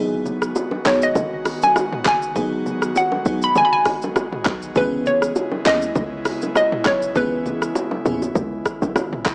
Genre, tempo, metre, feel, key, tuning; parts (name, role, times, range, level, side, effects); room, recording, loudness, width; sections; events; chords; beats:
afrobeats; 100 BPM; 4/4; swing 55% on 16ths; G# minor; A4 = 442 Hz
crystalline FM electric piano; accompaniment; 0.0-8.3 s; E3 to G#4; -27 LUFS; equal; chorus, phaser
airy breathy pad; sustained chords; 0.0-9.3 s; C#3 to F#4; -31 LUFS; equal; chorus
short 808-style bass; bass; 0.0-9.3 s; F#1 to D#2; -28 LUFS; equal
deep house drum kit; drums; 0.3-9.3 s; handclaps, hi-hat, kick drum, rim click, shaker, toms; -28 LUFS; equal
congas and bongos; percussion; 0.3-9.1 s; -29 LUFS; equal
hollow square pluck; melody; 0.9-8.9 s; B4 to B5; -21 LUFS; equal; chorus
little or no reverb; dry, gritty hardware recording, transformer saturation, small speaker sound; -20 LUFS; mono
0.0-9.3 A section
0.0 G#m7; 4.8 C#m7
0.56 1.16 1.76 | 2.36 2.96 3.56 4.16 | 4.76 5.36 5.96 6.56 | 7.16 7.76 8.36 8.96